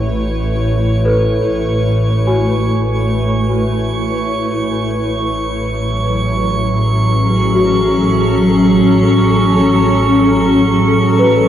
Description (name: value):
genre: ambient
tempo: 74 BPM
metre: 3/4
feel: straight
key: A major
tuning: A4 = 440 Hz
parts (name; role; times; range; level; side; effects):
- granular cloud pad; sustained chords; 0.0-11.5 s; F#3 to C#5; -15 LUFS; equal; built-in reverb
- celesta; arpeggios; 0.0-11.5 s; F#4 to G#5; -20 LUFS; left 1 dB; tape echo
- muted symphonic double bass section; bass; 0.0-11.5 s; A1; -17 LUFS; equal; transformer saturation
- drifting glass-harmonics texture; texture; 0.0-11.5 s; C#6; -21 LUFS; right 4 dB; chorus, built-in reverb
room: wet huge ambient reverb, RT60 7.2 s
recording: worn, warbling old tape, cassette tape, warbly pitch drift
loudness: -12 LUFS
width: side -10 dB against mid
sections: 0.0-11.5 A section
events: fade-in on ambient pad 0.0-11.5; fade-in on celesta 0.0-11.5; fade-in on synth texture 0.0-11.5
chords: 0.0 A6